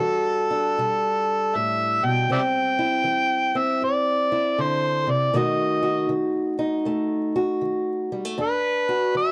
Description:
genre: acoustic country blues, solo or duo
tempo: 79 BPM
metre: 4/4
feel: swing 65% on 8ths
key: E minor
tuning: A4 = 440 Hz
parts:
  - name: overdriven harmonica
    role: melody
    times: 0.0-9.3 s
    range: A4 to G5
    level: -24 LUFS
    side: equal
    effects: none
  - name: fingerpicked old ladder-braced acoustic guitar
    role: accompaniment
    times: 0.0-9.3 s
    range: E2 to F#4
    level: -27 LUFS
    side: equal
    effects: none
room: light reverb, small room ambience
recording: dry, close 1970s-style studio recording, vinyl crackle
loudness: -23 LUFS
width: mono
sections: 0.0-9.3 A section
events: none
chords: 0.0 Em9; 2.3 C; 5.3 B7; 8.4 E7sus2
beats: 0.00 0.77 1.53 | 2.29 3.05 3.81 4.58 | 5.34 6.10 6.86 7.62 | 8.38 9.14

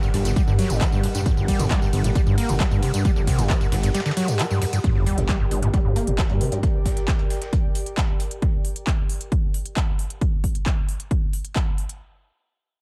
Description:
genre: driving peak-time techno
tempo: 134 BPM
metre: 4/4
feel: straight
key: G harmonic minor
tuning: A4 = 440 Hz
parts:
  - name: overdriven acid bass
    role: riff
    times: 0.0-6.6 s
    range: F#2 to Bb3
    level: -27 LUFS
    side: equal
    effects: sidechain pumping, tape echo
  - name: swarming drone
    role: drone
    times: 0.0-4.9 s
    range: G2 to G3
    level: -40 LUFS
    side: equal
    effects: none
  - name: dusty soul sampler-style drum kit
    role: drums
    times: 0.0-8.3 s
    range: hi-hat, snare drum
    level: -42 LUFS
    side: equal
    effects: none
  - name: techno drum kit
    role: drums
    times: 0.0-12.0 s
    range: handclaps, hi-hat, ride cymbal, tambourine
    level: -34 LUFS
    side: equal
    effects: overdrive, sidechain pumping on perc, sidechain pumping on hats, sidechain pumping on cymbals
  - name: airy breathy pad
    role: texture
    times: 0.0-10.2 s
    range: G4 to G5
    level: -35 LUFS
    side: equal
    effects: chorus, sidechain pumping
  - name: detuned saw bass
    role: bass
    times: 0.1-6.6 s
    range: G1 to G2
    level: -26 LUFS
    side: equal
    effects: sidechain pumping
  - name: electronic kick drum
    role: drums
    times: 0.4-11.6 s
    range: none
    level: -24 LUFS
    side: equal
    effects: overdrive
  - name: sub drop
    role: sound effects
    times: 4.8-6.6 s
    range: none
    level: -32 LUFS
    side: equal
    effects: none
room: digital ambience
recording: echo-heavy mix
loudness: -22 LUFS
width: mono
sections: 0.0-4.8 A section; 4.8-12.0 B section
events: drop 0.0-4.8; fade-out on analog synth pad 4.8-10.2; impact 4.8-6.6; filter sweep on detuned saw bass 4.8-6.6; filter sweep on acid bass 4.8-6.6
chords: 0.0 Gm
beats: 0.36 0.81 | 1.26 1.71 2.15 2.60 | 3.05 3.50 3.94 4.39 | 4.84 5.29 5.74 6.18 | 6.63 7.08 7.53 7.97 | 8.42 8.87 9.32 9.77 | 10.21 10.66 11.11 11.56

